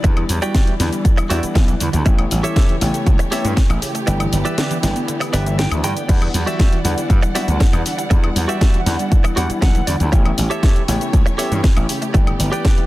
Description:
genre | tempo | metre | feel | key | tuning
nu-disco, nu disco | 119 BPM | 4/4 | straight | E dorian | A4 = 440 Hz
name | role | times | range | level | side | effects
clear grand piano | accompaniment | 0.0-12.9 s | E3 to F#5 | -26 LUFS | left 2 dB | digital delay
warm studio string section | sustained chords | 0.0-12.9 s | G3 to F#5 | -28 LUFS | right 1 dB | sidechain pumping
analog pluck | arpeggios | 0.0-12.8 s | C#3 to B3 | -28 LUFS | right 2 dB | chorus, phaser, sidechain pumping, tape echo
direct-recorded clean electric guitar | riff | 0.0-12.8 s | F#4 to G5 | -25 LUFS | right 2 dB | wide subtle chorus, digital delay
gritty slap bass | bass | 0.0-12.5 s | G1 to G2 | -20 LUFS | equal | overdrive, sidechain pumping
electronic kick drum | drums | 0.0-12.7 s | none | -14 LUFS | equal | none
house drum kit | drums | 0.0-12.9 s | crash cymbal, hi-hat, shaker, snare drum, woodblock | -25 LUFS | left 1 dB | none
room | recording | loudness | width
digital ambience | dense, heavily limited modern master | -14 LUFS | side -17 dB against mid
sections
0.0-12.9 A section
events
break 4.1-6.1; clean electric guitar fill 5.1-6.1, 9.4-10.1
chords
0.0 Em9; 2.1 A7; 4.1 G6; 6.1 Em9; 10.1 A7; 12.1 G6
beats
| 0.04 0.55 1.05 1.55 | 2.06 2.56 3.07 3.57 | 4.08 4.58 5.08 5.59 | 6.09 6.60 7.10 7.61 | 8.11 8.61 9.12 9.62 | 10.13 10.63 11.13 11.64 | 12.14 12.65

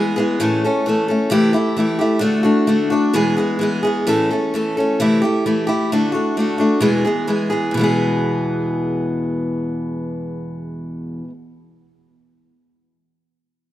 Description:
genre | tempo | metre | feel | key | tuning
rock | 130 BPM | 4/4 | straight | E mixolydian | A4 = 438 Hz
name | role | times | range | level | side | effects
picked steel-string acoustic guitar | solo | 0.0-11.3 s | E2 to A4 | -16 LUFS | equal | none
room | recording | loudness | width
moderate lush hall reverb, RT60 2.8 s | rough home demo mix | -16 LUFS | side -14 dB against mid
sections
0.4-7.7 A section; 7.7-11.4 B section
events
none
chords
0.4 A; 1.3 C6; 2.2 D; 3.1 E; 4.1 A; 5.0 C6; 5.9 D; 6.8 E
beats
| 0.41 0.86 1.31 1.77 | 2.23 2.68 3.14 3.60 | 4.06 4.52 4.98 5.44 | 5.90 6.36 6.82 7.28 | 7.74 8.21 8.67 9.13 | 9.59 10.05 10.52 10.98

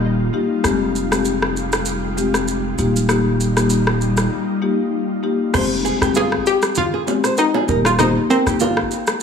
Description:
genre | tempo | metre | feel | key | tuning
afrobeats | 98 BPM | 4/4 | swing 55% on 16ths | F minor | A4 = 440 Hz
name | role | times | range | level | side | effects
hollow square pluck | melody | 0.0-0.3, 6.2-9.2 s | C4 to Eb5 | -19 LUFS | left 1 dB | chorus, tape echo
ethereal airy pad | sustained chords | 0.0-5.5 s | G3 to G4 | -25 LUFS | left 1 dB | ensemble chorus, built-in reverb
punchy sub bass | bass | 0.0-8.8 s | Eb1 to G1 | -22 LUFS | right 1 dB | none
marimba with medium mallets | accompaniment | 0.3-8.6 s | Ab3 to G4 | -21 LUFS | left 5 dB | none
afro-pop drum kit | drums | 0.6-9.2 s | crash cymbal, rim click, shaker | -23 LUFS | equal | none
nylon-string guitar | riff | 5.5-8.8 s | F4 to C5 | -24 LUFS | right 7 dB | tape echo
congas and bongos | percussion | 5.5-8.8 s | none | -25 LUFS | right 5 dB | none
room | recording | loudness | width
light reverb, small room ambience | none | -16 LUFS | side -6 dB against mid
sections
0.0-5.5 A section; 5.5-9.2 B section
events
break 4.3-5.5; kick muted 5.5-9.2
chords
0.0 Ebadd9; 0.6 Fmadd9; 2.8 Ebadd9; 5.5 Fmadd9; 7.7 Ebadd9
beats
0.03 | 0.64 1.25 1.87 2.48 | 3.09 3.70 4.32 4.93 | 5.54 6.15 6.76 7.38 | 7.99 8.60 9.21

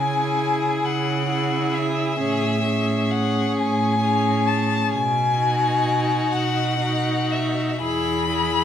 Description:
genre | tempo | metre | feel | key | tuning
classical, slow romantic movement for string quartet | 39-45 BPM (dotted quarters) | 6/8 | rubato | unclear | A4 = 441 Hz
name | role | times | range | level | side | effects
rich violin | melody | 0.0-8.6 s | E5 to B5 | -23 LUFS | left 4 dB | none
rich violin | second line | 0.0-8.6 s | F#4 to G#4 | -28 LUFS | left 4 dB | none
rich viola | accompaniment | 0.0-8.6 s | C#4 to E4 | -26 LUFS | right 1 dB | none
clear cello | bass | 0.0-8.6 s | E2 to C#3 | -25 LUFS | right 4 dB | none
room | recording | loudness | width
moderate stone room reverb, RT60 1.1 s | none | -19 LUFS | side -9 dB against mid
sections
0.0-8.6 A section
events
none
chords
0.0 C#m; 2.2 Amaj7; 4.9 B; 7.8 E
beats
0.85 | 2.20 3.57 | 4.93 6.32 | 7.81

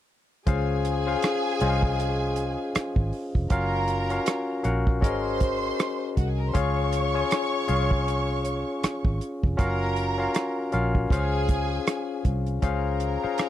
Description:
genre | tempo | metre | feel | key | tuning
lush 1970s-style soul | 79 BPM | 4/4 | swing 58% on 16ths | Db major | A4 = 442 Hz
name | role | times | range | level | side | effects
warm studio violin section | second line | 0.5-13.5 s | Gb4 to Db6 | -31 LUFS | right 3 dB | none
barky tine electric piano | accompaniment | 0.5-13.5 s | Db4 to Ab5 | -27 LUFS | moving between left 9 dB and equal | overdrive, auto-pan
vintage muted fingered electric bass | bass | 0.5-13.3 s | F1 to Db2 | -27 LUFS | right 1 dB | none
warm soul drum kit | drums | 0.5-13.5 s | hi-hat, kick drum, rim click | -25 LUFS | right 1 dB | none
room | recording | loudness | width
little or no reverb | dry, close 1970s-style studio recording | -23 LUFS | side -12 dB against mid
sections
0.5-12.6 A section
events
none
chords
0.5 Dbmaj7; 3.5 Gbmaj7; 5.0 Ab9sus4; 6.5 Dbmaj7; 9.6 Gbmaj7; 11.1 Dbmaj7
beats
| 0.47 1.23 1.99 2.75 | 3.51 4.27 5.03 5.79 | 6.55 7.31 8.07 8.83 | 9.59 10.35 11.11 11.87 | 12.63 13.39

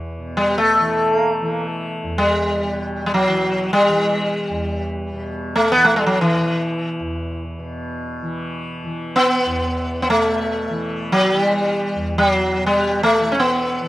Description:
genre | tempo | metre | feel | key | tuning
indian classical, Hindustani | free time | none | none | E raga bhimpalasi | A4 = 439 Hz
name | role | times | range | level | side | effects
tanpura | drone | 0.0-13.9 s | E2 to E3 | -27 LUFS | equal | none
sitar | melody | 0.4-13.9 s | E3 to C#4 | -17 LUFS | equal | none
room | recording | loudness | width
little or no reverb | recorded outdoors, with no room sound | -17 LUFS | side -16 dB against mid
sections
0.0-13.9 A section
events
none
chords
none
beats
free time

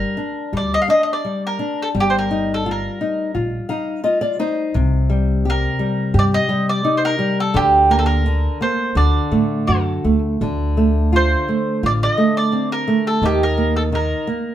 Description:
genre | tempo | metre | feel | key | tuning
fado-style ballad | 86 BPM | 4/4 | rubato | G minor | A4 = 440 Hz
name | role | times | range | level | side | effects
mandolin | melody | 0.0-14.5 s | G4 to F5 | -20 LUFS | right 2 dB | none
nylon-string guitar | accompaniment | 0.0-14.5 s | C3 to F5 | -20 LUFS | equal | none
upright bass | bass | 0.5-14.1 s | G1 to A2 | -20 LUFS | equal | none
room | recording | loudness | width
moderate studio reverb, RT60 0.9 s | band playing live in one room | -16 LUFS | side -11 dB against mid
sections
0.0-14.5 A section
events
nylon-string guitar fill 3.4-4.8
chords
0.0 Gm; 2.0 Ebadd9/G; 4.8 Cm7; 7.5 Gmadd11/D; 9.0 D; 10.4 Dm7; 13.2 Eb5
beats
0.53 1.24 | 1.95 2.66 3.35 4.05 | 4.76 5.45 6.14 6.84 | 7.54 8.25 8.96 9.67 | 10.40 11.12 11.83 12.53 | 13.22 13.92

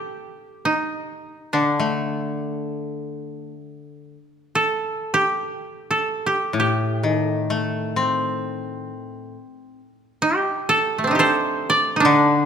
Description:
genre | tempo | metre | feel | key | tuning
japanese traditional, Japanese chamber music | free time | none | none | unclear | A4 = 440 Hz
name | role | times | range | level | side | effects
koto | melody | 0.0-12.5 s | A3 to D5 | -20 LUFS | right 2 dB | none
koto | accompaniment | 1.5-12.5 s | A2 to C4 | -22 LUFS | left 3 dB | none
room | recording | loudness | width
moderate concert hall reverb, RT60 2.0 s | minimal, uncompressed stereo recording | -19 LUFS | side -7 dB against mid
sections
0.0-12.5 A section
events
none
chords
none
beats
free time

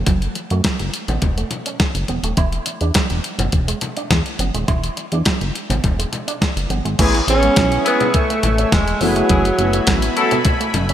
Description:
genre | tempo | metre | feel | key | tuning
early-eighties boogie funk | 104 BPM | 4/4 | straight | unclear | A4 = 440 Hz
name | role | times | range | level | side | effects
electric guitar with an envelope filter | riff | 0.0-10.9 s | F#3 to E4 | -27 LUFS | right 5 dB | wide subtle chorus
chorused synth bass | bass | 0.0-10.9 s | D#1 to F#2 | -20 LUFS | equal | none
crisp 8-bit digital drum machine | drums | 0.1-10.9 s | crash cymbal, hi-hat, kick drum, snare drum | -19 LUFS | equal | none
congas | percussion | 0.1-10.9 s | none | -28 LUFS | left 4 dB | none
clear horn section | second line | 7.0-10.3 s | G#3 to A4 | -23 LUFS | left 3 dB | slapback echo
mellow synth brass | accompaniment | 7.0-10.4 s | A3 to G#4 | -21 LUFS | left 1 dB | chorus
lush unison pad | sustained chords | 7.7-10.9 s | A3 to C#6 | -27 LUFS | left 1 dB | chorus
breathy alto saxophone | melody | 7.3-10.1 s | F#3 to C#4 | -19 LUFS | right 1 dB | tape echo
room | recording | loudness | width
moderate lush hall reverb, RT60 2.3 s | big arena sound | -15 LUFS | side -11 dB against mid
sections
0.0-7.0 A section; 7.0-10.9 B section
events
none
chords
0.0 F#m7; 2.4 E9; 7.0 Amaj7; 9.0 F#m11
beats
| 0.07 0.64 1.22 1.80 | 2.38 2.95 3.53 4.11 | 4.68 5.26 5.84 6.41 | 6.99 7.57 8.14 8.72 | 9.30 9.88 10.45

